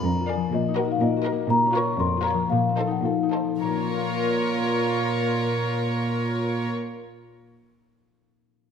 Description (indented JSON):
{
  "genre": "cinematic, playful, whimsical film cue",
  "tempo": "104-124 BPM",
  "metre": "2/4",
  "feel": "straight",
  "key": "Bb minor",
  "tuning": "A4 = 444 Hz",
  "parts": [
    { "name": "large celesta", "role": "melody", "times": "0.0-7.2 s", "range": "Eb5 to Db6", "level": "-27 LUFS", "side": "left 4 dB", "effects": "none" },
    { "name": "concert harp", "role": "arpeggios", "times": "0.0-7.6 s", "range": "Bb2 to F5", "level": "-28 LUFS", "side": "left 9 dB", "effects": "none" },
    { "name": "warm symphonic cello section", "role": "bass", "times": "0.0-6.7 s", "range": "F2 to Bb2", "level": "-27 LUFS", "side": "right 2 dB", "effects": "none" },
    { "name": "rich studio violin section", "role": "melody", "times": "0.3-6.7 s", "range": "C5 to F5", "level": "-34 LUFS", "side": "left 2 dB", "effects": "none" },
    { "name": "warm studio violin section", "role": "second line", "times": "0.3-6.7 s", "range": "A4 to D5", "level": "-30 LUFS", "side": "left 2 dB", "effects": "none" },
    { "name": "warm studio viola section", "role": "accompaniment", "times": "0.3-6.7 s", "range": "Eb4 to Bb4", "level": "-33 LUFS", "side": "right 3 dB", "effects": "none" }
  ],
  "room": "moderate scoring stage reverb, RT60 1.7 s",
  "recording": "none",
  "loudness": "-22 LUFS",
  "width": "side -7 dB against mid",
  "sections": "0.0-3.6 A section; 3.6-5.9 B section",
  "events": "slowing down 1.0-3.6",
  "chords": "0.0 Bb; 0.5 Ebm/Bb; 1.5 Bbm; 2.5 F7/Bb; 3.6 Bbm",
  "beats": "0.04 | 0.52 1.01 | 1.50 1.99 | 2.51 3.04 | 3.62 4.20 | 4.77 5.35"
}